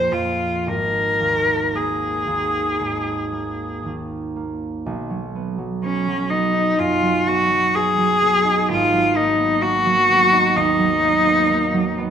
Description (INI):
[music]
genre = classical, impressionist duo for cello and harp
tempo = 54-65 BPM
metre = 4/4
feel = rubato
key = B lydian from 4.9 s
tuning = A4 = 440 Hz
[part]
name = rich cello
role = melody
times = 0.0-12.0 s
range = C#4 to C5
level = -17 LUFS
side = left 1 dB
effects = none
[part]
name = concert harp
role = accompaniment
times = 0.0-12.1 s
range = Ab1 to D#4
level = -23 LUFS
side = right 4 dB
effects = none
[sound]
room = wet recital hall reverb, RT60 1.4 s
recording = minimal, uncompressed stereo recording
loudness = -17 LUFS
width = side -8 dB against mid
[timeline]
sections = 0.0-4.9 A section; 4.9-12.1 B section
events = none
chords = 0.0 Bb5; 0.7 Absus2; 4.9 B6; 8.7 G#m9